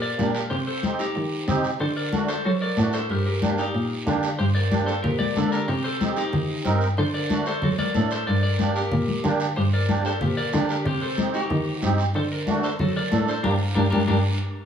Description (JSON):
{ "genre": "latin, cumbia", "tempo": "186 BPM", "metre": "4/4", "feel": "straight", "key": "G harmonic minor", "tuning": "A4 = 442 Hz", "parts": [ { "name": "clean electric guitar", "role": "melody", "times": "0.0-14.2 s", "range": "D4 to D5", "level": "-28 LUFS", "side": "left 2 dB", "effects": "spring reverb" }, { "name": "warm cello", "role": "bass", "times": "0.0-14.2 s", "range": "G2 to F#3", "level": "-25 LUFS", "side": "equal", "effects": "none" }, { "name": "musette accordion", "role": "accompaniment", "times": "0.2-14.2 s", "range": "A3 to Bb4", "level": "-28 LUFS", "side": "right 5 dB", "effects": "none" }, { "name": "congas", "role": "percussion", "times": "0.2-14.2 s", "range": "none", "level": "-28 LUFS", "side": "left 4 dB", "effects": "none" }, { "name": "guiro", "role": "percussion", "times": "0.2-14.2 s", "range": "none", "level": "-36 LUFS", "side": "right 4 dB", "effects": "none" } ], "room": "moderate large studio reverb, RT60 0.8 s", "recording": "small room ambience", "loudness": "-21 LUFS", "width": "side -8 dB against mid", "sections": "0.0-4.4 A section; 4.4-14.7 A section", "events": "band accent 13.4-14.7", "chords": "0.0 Gm; 0.5 Cm; 1.8 D; 3.1 Gm; 5.7 Cm; 7.0 D; 8.3 Gm; 10.9 Cm; 12.1 D; 13.4 Gm" }